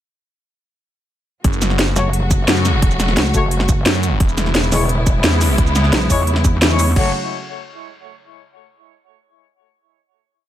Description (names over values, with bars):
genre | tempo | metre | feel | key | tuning
dark technical drum and bass | 174 BPM | 4/4 | straight | F# minor | A4 = 440 Hz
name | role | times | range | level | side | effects
rich studio string section | sustained chords | 1.4-7.1 s | C#3 to F#4 | -22 LUFS | equal | sidechain pumping
phased detuned saw bass | bass | 1.4-7.1 s | E1 to F#2 | -17 LUFS | equal | phaser, sidechain pumping
drum and bass drum kit | drums | 1.4-7.0 s | crash cymbal, hi-hat, shaker, snare drum | -19 LUFS | equal | small room ambience
electronic kick drum | drums | 1.4-7.0 s | none | -16 LUFS | equal | small room ambience
warm brass ensemble | stabs | 2.0-7.1 s | G#3 to C#5 | -24 LUFS | left 4 dB | ping-pong delay
pulsing pluck wobble bass | bass | 2.0-6.9 s | E1 to E2 | -18 LUFS | equal | chorus
room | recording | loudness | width
light reverb | none | -13 LUFS | side -12 dB against mid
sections
1.4-7.0 drop; 7.0-8.3 final chord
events
drop 1.4-7.0; band accent 6.6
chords
1.4 F#m; 4.2 E6; 7.0 F#m